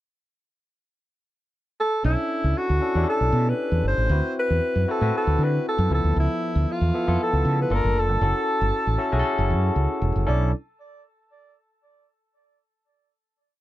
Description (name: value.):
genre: pop.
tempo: 117 BPM.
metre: 4/4.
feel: swing 54% on 16ths.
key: B minor.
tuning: A4 = 440 Hz.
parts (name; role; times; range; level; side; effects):
breathy alto saxophone; melody; 1.8-10.5 s; E4 to D5; -25 LUFS; equal; none.
barky tine electric piano; accompaniment; 2.0-10.5 s; E#3 to B4; -27 LUFS; left 2 dB; wide subtle chorus.
mellow fretless electric bass; bass; 2.0-10.5 s; E1 to D3; -22 LUFS; equal; lush chorus.
room: little or no reverb.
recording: dry, close 1970s-style studio recording.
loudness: -20 LUFS.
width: side -15 dB against mid.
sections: 0.0-2.0 pickup bar; 2.0-10.3 verse; 10.3-12.3 final chord.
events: none.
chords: 0.0 N.C.; 2.0 Bm11; 4.1 D13; 5.9 C#7alt; 7.7 Gm7; 8.2 F#m7; 10.3 Bm11.